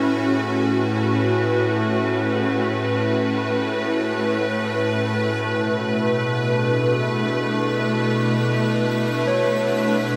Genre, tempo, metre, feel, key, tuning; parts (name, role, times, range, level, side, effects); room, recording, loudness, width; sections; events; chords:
ambient; 78 BPM; 3/4; straight; B dorian; A4 = 435 Hz
evolving wavetable pad; sustained chords; 0.0-10.2 s; A2 to B4; -22 LUFS; equal; ensemble chorus, built-in reverb
barky tine electric piano; arpeggios; 0.0-10.2 s; E4 to F#5; -31 LUFS; equal; diffuse ambient delay
twinkling granular texture; texture; 7.7-10.2 s; B6; -43 LUFS; equal
wet huge ambient reverb, RT60 7.8 s; dreamy mix soaked in reverb; -21 LUFS; mono
0.0-5.4 A section; 5.4-10.2 B section
0.0 A6; 5.4 Bm7